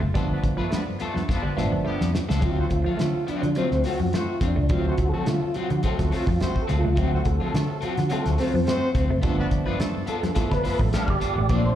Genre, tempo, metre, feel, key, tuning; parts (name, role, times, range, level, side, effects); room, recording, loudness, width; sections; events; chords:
funk; 106 BPM; 4/4; straight; A4 = 437 Hz
electric guitar at the edge of break-up; accompaniment; 0.0-11.7 s; F#3 to B4; -32 LUFS; left 8 dB; tremolo, slapback echo
semi-hollow electric guitar; riff; 0.0-11.6 s; F3 to Bb3; -33 LUFS; right 4 dB; slapback echo
vintage muted picked electric bass; bass; 0.0-11.7 s; F#1 to D3; -24 LUFS; equal
mellow clav; stabs; 0.2-11.8 s; F3 to E#4; -32 LUFS; right 4 dB; phaser, slapback echo
cloth-damped thuddy drum kit; drums; 0.2-11.6 s; hi-hat, kick drum, snare drum; -28 LUFS; equal
clear horn section; second line; 0.3-11.2 s; D3 to C5; -36 LUFS; left 2 dB; slapback echo
mellow tonewheel organ; melody; 2.4-11.8 s; C4 to F5; -28 LUFS; equal; chorus vibrato, slow rotary speaker, slapback echo
light reverb, small room ambience; live gig heard through the venue's PA, club reverb; -21 LUFS; side -11 dB against mid
0.0-2.4 A section; 2.4-11.5 B section
drum fill 1.3-2.4; tonewheel organ solo 2.4-11.5
0.2 G9; 2.4 D7#9; 9.2 G9